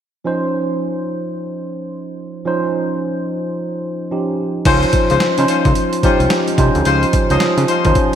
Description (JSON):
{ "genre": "R&B, new jack swing", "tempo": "109 BPM", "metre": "4/4", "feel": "swing 62% on 16ths", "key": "unclear", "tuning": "A4 = 440 Hz", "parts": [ { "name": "tine electric piano", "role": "accompaniment", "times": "0.2-8.2 s", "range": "F3 to Eb5", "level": "-17 LUFS", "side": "right 1 dB", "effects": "analog chorus" }, { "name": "mellow horn section", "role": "stabs", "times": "4.7-7.9 s", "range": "Db4 to C5", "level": "-20 LUFS", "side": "left 7 dB", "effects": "none" }, { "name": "fat analog bass", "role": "bass", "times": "4.7-7.9 s", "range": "C2 to Db3", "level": "-17 LUFS", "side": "equal", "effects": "none" }, { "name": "boom bap sampler-style drum kit", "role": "drums", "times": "4.7-8.1 s", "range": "crash cymbal, hi-hat, kick drum, snare drum", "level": "-18 LUFS", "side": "equal", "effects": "overdrive, gated reverb" } ], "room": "moderate lush hall reverb, RT60 2.4 s", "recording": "bright 1980s-style digital production", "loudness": "-14 LUFS", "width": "side -9 dB against mid", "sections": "0.3-4.7 A section; 4.7-8.2 B section", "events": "none", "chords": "0.3 Dbmaj9" }